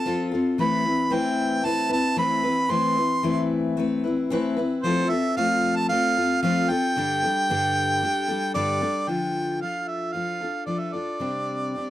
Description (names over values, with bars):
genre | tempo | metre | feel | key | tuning
acoustic folk duo or small band | 113 BPM | 4/4 | straight | unclear | A4 = 441 Hz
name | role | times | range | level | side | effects
warm harmonica | melody | 0.0-11.9 s | C5 to C6 | -24 LUFS | right 2 dB | none
picked steel-string acoustic guitar | accompaniment | 0.0-11.9 s | G2 to B4 | -24 LUFS | left 3 dB | none
room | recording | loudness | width
light reverb | dry, close 1970s-style studio recording | -21 LUFS | side -13 dB against mid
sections
0.0-9.1 A section; 9.1-11.9 B section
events
none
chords
0.0 F; 0.6 Amadd9/E; 4.8 F; 7.0 Gsus2; 9.1 Dm; 11.2 Csus2